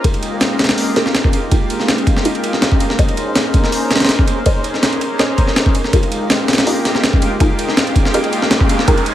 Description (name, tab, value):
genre	drum and bass, jungle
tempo	163 BPM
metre	4/4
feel	straight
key	F minor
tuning	A4 = 440 Hz
part	lush unison pad	sustained chords	0.0-9.1 s	Ab3 to C5	-20 LUFS	equal	chorus
part	filtered dub chord stab	stabs	0.0-8.9 s	Eb4 to Eb5	-22 LUFS	equal	phaser, dub echo
part	jungle sampler-style drum kit	drums	0.0-9.1 s	hi-hat, kick drum, ride cymbal, snare drum	-14 LUFS	equal	overdrive
part	swell and riser	sound effects	0.0, 7.5-9.1 s	none	-27 LUFS	right 4 dB	none
part	drifting glass-harmonics texture	texture	0.0-9.1 s	Bb3 to Bb4	-28 LUFS	left 1 dB	chorus, built-in reverb
room	light reverb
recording	vinyl crackle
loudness	-13 LUFS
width	side -12 dB against mid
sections	0.0-9.1 A section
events	build-up 0.0-9.1; filter sweep on synth stab 0.0-9.1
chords	0.0 Fm11; 3.0 Bbm11; 5.9 Fm11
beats	| 0.04 0.41 0.78 1.15 | 1.52 1.89 2.25 2.62 | 2.99 3.36 3.73 4.09 | 4.46 4.83 5.20 5.57 | 5.93 6.30 6.67 7.04 | 7.41 7.78 8.14 8.51 | 8.88